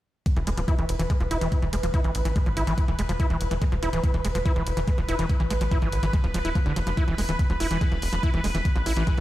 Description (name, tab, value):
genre	psychedelic trance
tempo	143 BPM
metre	4/4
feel	straight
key	E major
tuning	A4 = 440 Hz
part	bubbling stepped-filter texture	sustained chords	0.5-9.2 s	B4	-32 LUFS	right 1 dB	chorus, built-in reverb, sidechain pumping
part	electronic hi-hat	drums	0.3-9.2 s	none	-38 LUFS	left 1 dB	studio ambience
part	electronic kick drum	drums	0.3-9.2 s	none	-23 LUFS	equal	overdrive, studio ambience
part	overdriven acid bass	riff	0.4-9.2 s	D3 to E4	-29 LUFS	equal	distortion, auto-pan, sidechain pumping, ping-pong delay
part	tight sequencer bass	bass	0.4-9.2 s	D1 to A1	-27 LUFS	equal	none
room	little or no reverb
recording	played on a big sound system in a bare room, stone room reverb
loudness	-22 LUFS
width	side -15 dB against mid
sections	0.3-9.2 A section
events	none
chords	0.3 E5